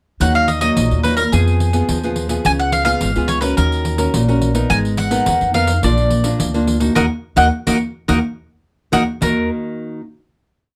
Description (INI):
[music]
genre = samba and choro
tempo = 106 BPM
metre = 4/4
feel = straight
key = Eb minor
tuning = A4 = 440 Hz
[part]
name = mandolin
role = melody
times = 0.2-9.5 s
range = Ab4 to Ab5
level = -20 LUFS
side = equal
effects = none
[part]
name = nylon-string guitar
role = accompaniment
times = 0.2-10.0 s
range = F2 to Bb4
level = -22 LUFS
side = equal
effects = none
[part]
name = upright bass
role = bass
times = 0.2-9.5 s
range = Ab1 to F2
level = -22 LUFS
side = equal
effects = none
[part]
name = pandeiro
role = percussion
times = 0.2-9.3 s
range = none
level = -26 LUFS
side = equal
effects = none
[sound]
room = moderate small room reverb, RT60 0.5 s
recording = none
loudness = -17 LUFS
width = mono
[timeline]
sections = 0.2-9.2 A section; 9.2-10.8 final chord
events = band accent 7.0-9.2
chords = 0.2 Ebm; 1.3 Fdim; 2.5 Db7; 3.6 Ebm7; 4.7 Abmadd9; 5.8 Bb; 7.0 Ebm